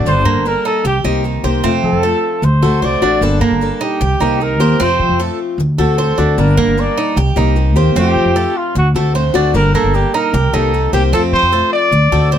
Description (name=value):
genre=latin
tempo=152 BPM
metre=4/4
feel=straight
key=G minor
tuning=A4 = 440 Hz
part: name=picked steel-string acoustic guitar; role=accompaniment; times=0.0-12.4 s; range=C3 to A4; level=-19 LUFS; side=left 5 dB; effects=none
part: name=Cuban tres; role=arpeggios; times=0.0-12.4 s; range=Bb3 to C5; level=-19 LUFS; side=right 6 dB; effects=none
part: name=upright bass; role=bass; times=0.0-12.4 s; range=G1 to F3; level=-15 LUFS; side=equal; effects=none
part: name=warm trumpet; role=melody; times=0.1-12.4 s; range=F4 to D5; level=-16 LUFS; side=equal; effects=none
room=little or no reverb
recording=close, detailed microphones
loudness=-12 LUFS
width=side -9 dB against mid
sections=0.0-9.5 A section; 9.5-12.4 B section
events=trumpet solo 0.0-9.5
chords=0.1 Gmadd9; 0.8 Cm7; 1.6 F; 2.4 D7; 3.2 Gmadd9; 4.0 Cm7; 4.8 F; 5.6 D7; 6.4 Gmadd9; 7.2 Cm7; 8.0 F; 8.8 D7; 9.5 Gmadd9; 10.3 Cm7; 11.1 F